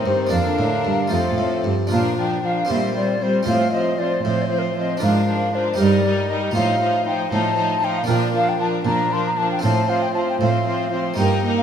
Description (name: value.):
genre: classical, baroque-style concerto movement with solo episodes.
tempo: 78 BPM (dotted quarters).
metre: 6/8.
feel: straight.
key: Bb major.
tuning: A4 = 440 Hz.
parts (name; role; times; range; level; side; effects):
warm chamber violin section; melody; 0.0-11.6 s; Eb4 to C5; -30 LUFS; left 8 dB; none.
wooden flute; melody; 0.0-11.6 s; Bb4 to C6; -23 LUFS; left 2 dB; none.
warm chamber violin section; second line; 0.0-11.6 s; C4 to Eb4; -27 LUFS; left 2 dB; none.
dark chamber viola section; accompaniment; 0.0-11.6 s; D3 to Bb3; -25 LUFS; right 2 dB; none.
harpsichord; accompaniment; 0.0-11.6 s; F2 to D5; -26 LUFS; equal; none.
warm chamber cello section; bass; 0.0-11.6 s; F2 to Bb2; -23 LUFS; right 4 dB; none.
room: wet concert hall reverb, RT60 2.2 s.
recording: none.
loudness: -17 LUFS.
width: side -8 dB against mid.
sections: 0.0-1.9 A section; 1.9-11.6 A section.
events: none.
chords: 0.3 Bb/F; 1.1 F; 1.9 Bb; 2.7 C5/Bb; 3.5 F/A; 5.0 Bb7/Ab; 5.8 Eb/G; 6.6 F7/A; 8.1 Bb; 9.6 F/A.